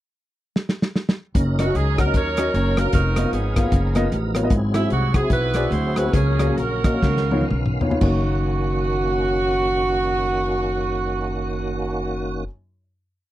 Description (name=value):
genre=uptempo gospel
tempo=114-152 BPM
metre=4/4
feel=swing 61% on 8ths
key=F# major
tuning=A4 = 440 Hz
part: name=warm soul drum kit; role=drums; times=0.6-8.2 s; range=crash cymbal, hi-hat, kick drum, rim click, snare drum, toms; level=-22 LUFS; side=equal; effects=none
part: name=tonewheel organ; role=sustained chords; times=1.3-12.4 s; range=D#3 to E#5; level=-29 LUFS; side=right 1 dB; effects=slow rotary speaker, chorus vibrato
part: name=upright bass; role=bass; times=1.4-12.5 s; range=E#1 to D#2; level=-23 LUFS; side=equal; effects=none
part: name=warm saxophone section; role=melody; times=1.6-12.4 s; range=B3 to C#5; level=-24 LUFS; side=right 3 dB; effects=none
part: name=warm upright piano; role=accompaniment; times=1.6-12.5 s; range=F#2 to F#5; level=-26 LUFS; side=left 2 dB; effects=none
room=little or no reverb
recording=dry, close 1970s-style studio recording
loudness=-18 LUFS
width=side -14 dB against mid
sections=0.0-1.3 pickup bar; 1.3-8.0 breakdown; 8.0-12.2 final chord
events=drum fill 0.6-1.3, 7.0-8.0; slowing down 4.5-8.0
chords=0.0 N.C.; 1.3 F#6; 2.9 C#13/E#; 4.5 G#7alt; 6.1 F#/C#; 7.0 C#9; 8.0 F#6